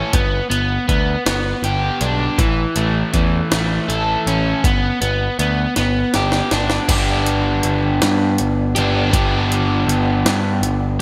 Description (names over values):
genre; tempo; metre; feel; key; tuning
indie rock; 53 BPM (dotted quarters); 6/8; straight; unclear; A4 = 440 Hz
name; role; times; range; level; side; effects
crunchy overdriven guitar; riff; 0.0-11.0 s; E3 to A4; -21 LUFS; equal; none
growling picked electric bass; bass; 0.1-11.0 s; G1 to G2; -23 LUFS; equal; overdrive
jungle sampler-style drum kit; drums; 0.1-10.8 s; crash cymbal, hi-hat, kick drum, snare drum; -23 LUFS; equal; gated reverb
room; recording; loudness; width
moderate lush hall reverb, RT60 2.6 s; bright 1980s-style digital production; -18 LUFS; mono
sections
0.0-6.9 A section; 6.9-11.0 B section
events
drum fill 5.8-6.9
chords
0.1 G; 2.4 A; 4.6 G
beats
| 0.13 1.25 | 2.38 3.51 | 4.63 5.76 | 6.88 8.01 | 9.13 10.26